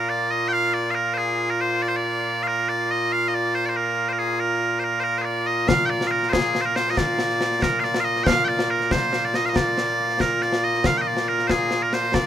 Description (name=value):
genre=scottish traditional, Scottish pipe music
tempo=93 BPM (dotted quarters)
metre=6/8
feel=straight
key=Bb mixolydian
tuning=A4 = 440 Hz
part: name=loud bright bagpipes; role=melody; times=0.0-12.3 s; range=Bb2 to G5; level=-20 LUFS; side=equal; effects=none
part: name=concert snare drum and concert bass drum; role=drums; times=5.7-12.2 s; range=none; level=-24 LUFS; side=left 2 dB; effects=none
room=light reverb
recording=minimal, uncompressed stereo recording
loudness=-20 LUFS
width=side -10 dB against mid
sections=0.0-5.7 A section; 5.7-12.3 A section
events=none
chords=none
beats=| 0.53 1.17 | 1.82 2.46 | 3.11 3.75 | 4.40 5.04 | 5.69 6.33 | 6.98 7.62 | 8.27 8.91 | 9.56 10.20 | 10.85 11.49 | 12.14